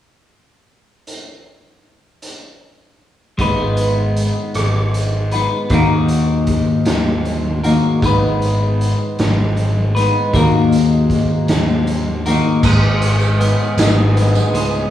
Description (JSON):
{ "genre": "psychedelic rock", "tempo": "52 BPM (dotted quarters)", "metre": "6/8", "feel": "straight", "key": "G# minor", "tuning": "A4 = 440 Hz", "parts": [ { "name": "raw garage drum kit", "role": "drums", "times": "1.1-14.7 s", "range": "crash cymbal, hi-hat, kick drum, rim click, snare drum", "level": "-20 LUFS", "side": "equal", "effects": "none" }, { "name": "clean electric guitar", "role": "riff", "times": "3.4-14.9 s", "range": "D#3 to B4", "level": "-17 LUFS", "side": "left 2 dB", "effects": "phaser" }, { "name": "fuzz fingered electric bass", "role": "bass", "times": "3.4-14.8 s", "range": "G#1 to D#2", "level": "-18 LUFS", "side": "equal", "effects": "overdrive" }, { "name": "pedal harmonium", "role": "drone", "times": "3.4-14.9 s", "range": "G#2 to G#3", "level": "-26 LUFS", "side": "right 1 dB", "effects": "none" }, { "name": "percussive tonewheel organ", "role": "sustained chords", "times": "12.6-14.9 s", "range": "D#4 to D#6", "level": "-24 LUFS", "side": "right 2 dB", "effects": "fast rotary speaker" }, { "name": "tambourine", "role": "percussion", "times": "12.6-14.8 s", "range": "none", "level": "-33 LUFS", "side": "right 5 dB", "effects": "none" } ], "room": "moderate large studio reverb, RT60 1.4 s", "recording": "band playing live in one room, studio reverb", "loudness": "-13 LUFS", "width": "side -11 dB against mid", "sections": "1.1-3.4 A section; 3.4-12.6 B section; 12.6-14.9 C section", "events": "none", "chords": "1.1 N.C.; 3.4 G#m; 5.7 D#m; 8.0 G#m; 10.3 D#m; 12.6 G#m" }